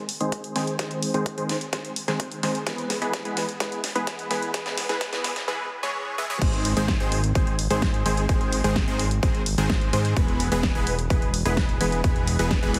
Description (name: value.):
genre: EDM, festival progressive house.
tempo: 128 BPM.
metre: 4/4.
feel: straight.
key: unclear.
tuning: A4 = 440 Hz.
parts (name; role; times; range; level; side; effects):
supersaw stab; riff; 0.0-12.8 s; Eb3 to E5; -29 LUFS; equal; sidechain pumping, low-pass filter, tape echo.
big-room dance drum kit; drums; 0.1-12.8 s; crash cymbal, hi-hat, snare drum; -33 LUFS; equal; high-pass filter on hats, small room ambience, high-pass filter on toms, high-pass filter on snare, high-pass filter on cymbals.
electronic kick drum; drums; 0.3-12.6 s; none; -27 LUFS; equal; high-pass filter on kick, small room ambience.
fat analog bass; bass; 6.4-12.8 s; E1 to Ab2; -28 LUFS; equal; sidechain pumping.
room: light reverb, digital ambience.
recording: heavily compressed radio sound, multiband compression, high-pass filter.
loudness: -25 LUFS.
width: mono.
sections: 0.0-6.4 A section; 6.4-12.8 B section.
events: build-up 0.0-6.4; drum fill 0.0-5.5; filter sweep on supersaw synth 0.0-6.4; drop 6.4-12.8.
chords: 0.0 Ab; 2.7 E; 6.4 Ab; 10.2 E.